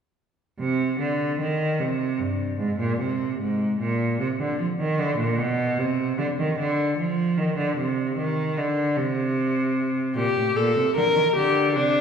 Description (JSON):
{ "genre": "classical, baroque-style fugue for string quartet", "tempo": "50 BPM (dotted quarters)", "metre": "12/8", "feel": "straight", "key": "C minor", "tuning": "A4 = 440 Hz", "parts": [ { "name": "clear cello", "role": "bass", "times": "0.6-12.0 s", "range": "G2 to F3", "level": "-23 LUFS", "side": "right 1 dB", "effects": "none" }, { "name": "clear viola", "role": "accompaniment", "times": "10.2-12.0 s", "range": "D4 to Bb4", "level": "-20 LUFS", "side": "left 2 dB", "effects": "none" } ], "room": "wet scoring stage reverb, RT60 1.8 s", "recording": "heard from further back in the room", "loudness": "-22 LUFS", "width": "side -7 dB against mid", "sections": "0.6-12.0 A section", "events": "none", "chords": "0.6 Cm; 3.0 D7(b5, no3); 5.4 Bdim; 7.8 Cm; 10.2 Gm", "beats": "| 0.60 1.80 3.00 4.20 | 5.39 6.59 7.78 8.97 | 10.16 11.36" }